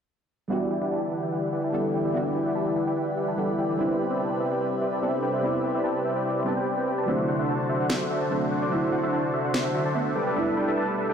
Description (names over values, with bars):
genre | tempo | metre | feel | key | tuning
future bass | 146 BPM | 4/4 | swing 54% on 16ths, half-time | unclear | A4 = 440 Hz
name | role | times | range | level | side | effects
soft round pluck | accompaniment | 0.5-11.1 s | F#3 to A4 | -30 LUFS | right 2 dB | ensemble chorus, ping-pong delay
airy breathy pad | sustained chords | 1.0-11.1 s | B2 to B4 | -33 LUFS | left 2 dB | chorus
supersaw chords | riff | 0.5-11.1 s | D3 to A5 | -25 LUFS | equal | low-pass filter, ping-pong delay
electronic snare drum | drums | 7.9-9.6 s | none | -31 LUFS | equal | none
room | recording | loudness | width
light reverb, digital ambience | played on a big sound system in a bare room, stone room reverb | -24 LUFS | side -7 dB against mid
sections
0.5-11.1 A section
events
none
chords
0.5 Em7; 3.8 Cmaj7; 7.1 D7; 10.2 G69